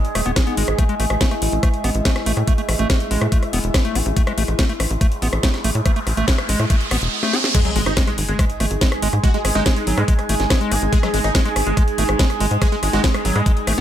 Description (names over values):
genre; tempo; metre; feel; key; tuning
psychedelic trance; 142 BPM; 4/4; straight; unclear; A4 = 442 Hz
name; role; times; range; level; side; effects
overtone-sweeping drone; sustained chords; 0.0-13.8 s; G#3 to G#4; -28 LUFS; right 2 dB; chorus, built-in reverb, sidechain pumping
techno drum kit; drums; 0.0-13.8 s; crash cymbal, hi-hat, rim click, snare drum; -24 LUFS; left 1 dB; small room ambience
airy breathy pad; texture; 0.0-13.8 s; D#4 to G#5; -28 LUFS; right 1 dB; chorus, phaser, sidechain pumping
overdriven acid bass; riff; 0.2-13.8 s; F#3 to C#4; -26 LUFS; moving between left 6 dB and right 6 dB; auto-pan, sidechain pumping, dub echo
tight sequencer bass; bass; 0.2-13.8 s; D#1 to A2; -20 LUFS; equal; tube saturation
electronic kick drum; drums; 0.4-13.5 s; none; -17 LUFS; equal; small room ambience
riser and impact; sound effects; 5.3-9.2 s; none; -26 LUFS; right 1 dB; none
supersaw stab; melody; 7.5-13.4 s; G#3 to G#4; -26 LUFS; right 1 dB; phaser, sidechain pumping, tape echo
room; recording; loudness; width
little or no reverb; none; -16 LUFS; side -11 dB against mid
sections
0.0-7.5 A section; 7.5-13.8 B section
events
riser 5.3-7.5; drum fill 7.2-7.5; drop 7.5-13.8; impact 7.5-9.2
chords
0.0 G#5; 0.8 A5; 7.5 G#5